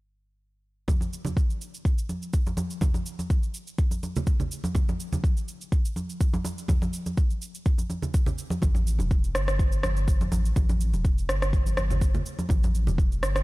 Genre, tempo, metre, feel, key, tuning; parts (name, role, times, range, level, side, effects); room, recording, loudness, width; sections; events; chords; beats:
afro house; 124 BPM; 4/4; swing 54% on 16ths; A4 = 439 Hz
electronic cabasa and rim click; drums; 0.9-13.4 s; -34 LUFS; right 1 dB
electronic kick drum; drums; 0.9-13.1 s; -24 LUFS; equal
congas; percussion; 0.9-13.0 s; -31 LUFS; right 1 dB
round analog bass; bass; 8.6-13.4 s; E1 to A1; -26 LUFS; equal; sidechain pumping
little or no reverb; dark, warm production, faint mains hum; -24 LUFS; side -20 dB against mid
0.9-13.4 A section
| 0.89 1.37 1.85 2.34 | 2.82 3.30 3.79 4.27 | 4.76 5.24 5.72 6.21 | 6.69 7.17 7.66 8.14 | 8.63 9.11 9.60 10.08 | 10.56 11.05 11.53 12.01 | 12.50 12.98